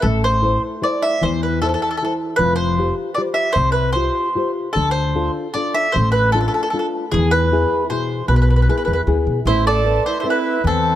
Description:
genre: italian folk, Italian serenade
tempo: 153 BPM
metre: 3/4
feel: straight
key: A minor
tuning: A4 = 438 Hz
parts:
  - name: mandolin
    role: melody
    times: 0.0-11.0 s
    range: G#4 to E5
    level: -19 LUFS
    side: equal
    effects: none
  - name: nylon-string guitar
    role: accompaniment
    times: 0.0-11.0 s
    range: B2 to C5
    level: -22 LUFS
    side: left 3 dB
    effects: none
  - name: upright bass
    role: bass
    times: 0.0-11.0 s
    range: F1 to E2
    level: -19 LUFS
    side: equal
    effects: none
  - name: accordion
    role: second line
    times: 9.5-11.0 s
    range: C4 to A4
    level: -22 LUFS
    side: right 6 dB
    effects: none
room: light reverb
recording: none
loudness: -16 LUFS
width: side -12 dB against mid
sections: 0.0-11.0 A section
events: none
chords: 0.0 Am; 2.4 Fsus2; 4.8 Dm; 7.1 E; 9.5 Amadd9

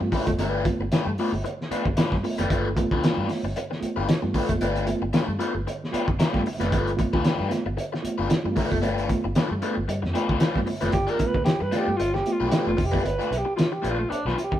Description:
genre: funk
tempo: 114 BPM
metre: 4/4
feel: swing 56% on 16ths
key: G mixolydian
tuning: A4 = 440 Hz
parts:
  - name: crunchy overdriven guitar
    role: accompaniment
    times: 0.0-14.6 s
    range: A3 to D5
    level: -28 LUFS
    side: left 3 dB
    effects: phaser
  - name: mellow reed electric piano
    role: stabs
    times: 0.0-13.1 s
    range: G2 to F4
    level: -30 LUFS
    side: right 3 dB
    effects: fast tremolo
  - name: vintage muted fingered electric bass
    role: bass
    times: 0.0-14.6 s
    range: F1 to G2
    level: -30 LUFS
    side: equal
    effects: none
  - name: cloth-damped thuddy drum kit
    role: drums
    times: 0.1-14.6 s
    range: hi-hat, kick drum, snare drum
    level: -25 LUFS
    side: equal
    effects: none
  - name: growling alto saxophone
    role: melody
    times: 10.9-14.6 s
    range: D4 to B4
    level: -26 LUFS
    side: right 1 dB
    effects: none
room: moderate stone room reverb, RT60 1.1 s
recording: band playing live in one room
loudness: -22 LUFS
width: side -11 dB against mid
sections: 0.0-10.9 A section; 10.9-14.6 B section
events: alto saxophone solo 10.9-14.6; break 13.1-14.6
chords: 0.0 G9

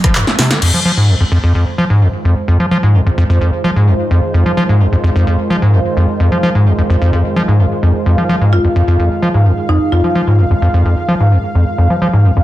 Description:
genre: acid house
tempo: 129 BPM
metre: 4/4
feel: straight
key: F minor pentatonic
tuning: A4 = 437 Hz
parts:
  - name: acid bass, square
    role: riff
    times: 0.0-12.4 s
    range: F2 to F3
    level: -11 LUFS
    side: equal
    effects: overdrive, cassette tape, tape echo
  - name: punchy analog drum machine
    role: drums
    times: 0.0-0.7 s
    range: crash cymbal, handclaps, hi-hat, rim click, snare drum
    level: -15 LUFS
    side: equal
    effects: none
  - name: lush unison pad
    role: sustained chords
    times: 0.6-12.4 s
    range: Eb3 to F5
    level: -19 LUFS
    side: right 1 dB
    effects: chorus, sidechain pumping
  - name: marimba with medium hard mallets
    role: melody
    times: 8.5-10.6 s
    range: Eb4 to F4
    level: -19 LUFS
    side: equal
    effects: tape echo
room: wet small room reverb, RT60 0.5 s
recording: dense, heavily limited modern master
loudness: -10 LUFS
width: side -15 dB against mid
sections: 0.6-12.4 A section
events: drum fill 0.3-0.6; filter sweep on analog synth pad 0.6-12.4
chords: 0.0 F7(no3); 0.6 Fm7

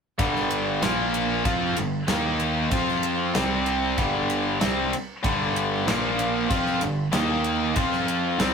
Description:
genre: hard rock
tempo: 95 BPM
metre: 4/4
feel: straight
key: G minor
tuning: A4 = 441 Hz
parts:
  - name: overdriven semi-hollow guitar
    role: riff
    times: 0.2-8.5 s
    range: G2 to F4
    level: -29 LUFS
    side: right 5 dB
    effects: spring reverb
  - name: tight distorted guitar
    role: riff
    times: 0.2-8.5 s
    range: G2 to F4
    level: -25 LUFS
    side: left 5 dB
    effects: distortion
  - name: tight distorted guitar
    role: riff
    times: 0.2-8.5 s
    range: G2 to F4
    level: -30 LUFS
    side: right 1 dB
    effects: distortion
  - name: picked electric bass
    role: bass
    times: 0.2-8.5 s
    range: G1 to F2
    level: -32 LUFS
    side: right 1 dB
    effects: none
  - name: gated 80s drum kit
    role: drums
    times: 0.2-8.5 s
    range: kick drum, ride cymbal, snare drum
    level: -29 LUFS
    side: right 1 dB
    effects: none
room: moderate small room ambience, RT60 0.5 s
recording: rough rehearsal-room recording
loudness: -22 LUFS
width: side -6 dB against mid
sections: 0.2-8.5 A section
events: none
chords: 0.2 G5; 0.8 Bb5; 1.5 G5; 2.1 Eb5; 2.7 F5; 3.3 C5; 4.0 G5; 5.9 Bb5; 6.5 G5; 7.1 Eb5; 7.8 F5

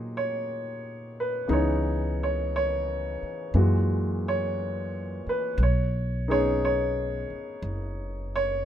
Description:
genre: jazz ballad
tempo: 59 BPM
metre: 4/4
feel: swing 69% on 8ths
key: unclear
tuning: A4 = 440 Hz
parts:
  - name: warm upright piano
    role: accompaniment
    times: 0.0-8.7 s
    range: Bb2 to F5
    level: -27 LUFS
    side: equal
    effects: none
  - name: upright bass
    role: bass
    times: 0.0-8.7 s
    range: Gb1 to Bb2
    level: -28 LUFS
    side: equal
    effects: none
room: little or no reverb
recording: minimal, uncompressed stereo recording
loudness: -25 LUFS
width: side -10 dB against mid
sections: 0.0-8.7 A section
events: none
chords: 0.0 Ebm9; 1.5 Dbm9; 3.5 Gb9; 5.6 Cb69

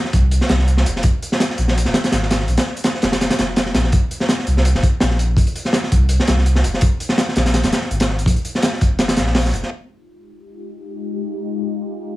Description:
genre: drum and bass, jungle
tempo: 166 BPM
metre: 4/4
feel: swing 54% on 16ths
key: F minor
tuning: A4 = 440 Hz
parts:
  - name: soft dub sub bass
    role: bass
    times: 0.1-9.6 s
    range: Eb1 to C2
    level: -18 LUFS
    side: equal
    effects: none
  - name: crunchy breakbeat drum kit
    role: drums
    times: 0.1-9.7 s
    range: hi-hat, kick drum, snare drum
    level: -17 LUFS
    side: equal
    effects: none
  - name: ethereal airy pad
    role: sustained chords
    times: 10.6-12.2 s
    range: Ab3 to G4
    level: -25 LUFS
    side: left 4 dB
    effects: ensemble chorus, built-in reverb, phaser
room: small room reverb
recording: vinyl crackle, low-pass filter, studio ambience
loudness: -15 LUFS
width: side -17 dB against mid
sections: 0.0-9.7 A section; 9.7-12.2 B section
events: kick drops out 9.0-9.7; filter sweep on ambient pad 9.7-12.2; filter sweep 9.7-12.2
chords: 0.0 F5; 1.0 Eb5; 2.5 Bb5; 3.9 F5; 6.8 Eb5; 8.3 Bb5; 9.7 Fm9

